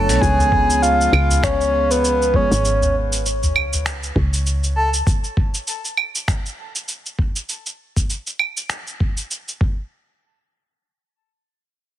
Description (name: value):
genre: organic downtempo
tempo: 99 BPM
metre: 4/4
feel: swing 57% on 16ths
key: unclear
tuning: A4 = 441 Hz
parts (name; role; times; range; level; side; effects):
- breathy flute-like synth lead; melody; 0.0-4.9 s; B4 to A5; -20 LUFS; left 1 dB; chorus, ping-pong delay
- muted felt-like synth keys; accompaniment; 0.0-2.7 s; E#3 to A4; -25 LUFS; right 3 dB; chorus, sidechain pumping, low-pass filter, digital delay
- santur; arpeggios; 0.0-2.5 s; G#3 to C#5; -30 LUFS; left 1 dB; vintage 12-bit sampler grit, digital delay
- woody FM bass; bass; 0.0-5.0 s; G#1 to C#2; -20 LUFS; equal; sidechain pumping
- dusty soul sampler-style drum kit; drums; 0.1-9.6 s; claves, finger snaps, hi-hat, shaker; -23 LUFS; right 2 dB; none
- electronic kick drum; drums; 0.2-9.7 s; none; -19 LUFS; equal; none
- udu; percussion; 0.4-3.8 s; none; -24 LUFS; equal; none
room: light reverb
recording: heavily compressed radio sound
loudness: -17 LUFS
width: side -12 dB against mid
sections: 0.2-9.9 A section; 9.9-12.0 B section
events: break 0.0; filter sweep on synth keys 0.2-2.6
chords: 0.2 C#7; 9.6 N.C.